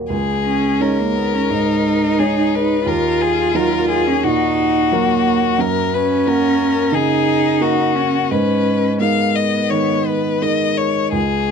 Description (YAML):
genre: neoclassical piano and strings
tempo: 87 BPM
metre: 4/4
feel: rubato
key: unclear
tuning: A4 = 440 Hz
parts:
  - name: warm baby grand piano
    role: accompaniment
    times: 0.0-11.5 s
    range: Db2 to Db5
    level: -19 LUFS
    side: right 2 dB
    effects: none
  - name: rich violin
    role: melody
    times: 0.1-11.5 s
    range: Gb4 to F5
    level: -19 LUFS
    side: left 9 dB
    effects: none
  - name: rich cello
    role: second line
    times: 0.4-11.5 s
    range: Bb3 to F4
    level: -19 LUFS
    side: right 3 dB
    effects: none
room: light reverb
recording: dark, warm production, nothing above 10.8 kHz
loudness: -14 LUFS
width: side -6 dB against mid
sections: 0.1-11.5 A section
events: none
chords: 0.1 Dbsus2; 2.9 Ebm; 5.6 Gb; 8.3 Abmadd9